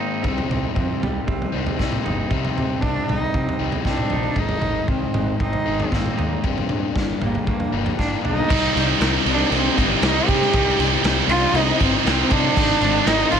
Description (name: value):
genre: quiet-loud alternative rock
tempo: 116 BPM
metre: 4/4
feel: straight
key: C minor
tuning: A4 = 442 Hz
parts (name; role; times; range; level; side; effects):
- dark cello; melody; 0.0-13.4 s; G3 to G4; -24 LUFS; right 2 dB; none
- twangy electric guitar; arpeggios; 0.0-8.5 s; G2 to Eb4; -30 LUFS; right 7 dB; none
- overdriven semi-hollow guitar; riff; 0.0-13.4 s; G2 to Eb4; -25 LUFS; left 11 dB; none
- fuzz picked electric bass; bass; 0.2-13.4 s; G1 to C3; -26 LUFS; equal; overdrive
- raw garage drum kit; drums; 0.2-13.4 s; crash cymbal, kick drum, ride cymbal, snare drum, toms; -24 LUFS; right 1 dB; none
- scooped high-gain guitar; riff; 8.5-13.4 s; Ab2 to Eb4; -23 LUFS; right 14 dB; distortion
- tight distorted guitar; riff; 8.5-13.4 s; Ab2 to Eb4; -26 LUFS; right 1 dB; distortion
room: moderate large studio reverb, RT60 1.2 s, studio ambience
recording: none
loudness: -18 LUFS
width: side -7 dB against mid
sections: 0.0-8.5 A section; 8.5-13.4 B section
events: none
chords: 0.2 Cm; 4.4 Ab; 6.4 Gm; 8.5 Cm; 12.6 Ab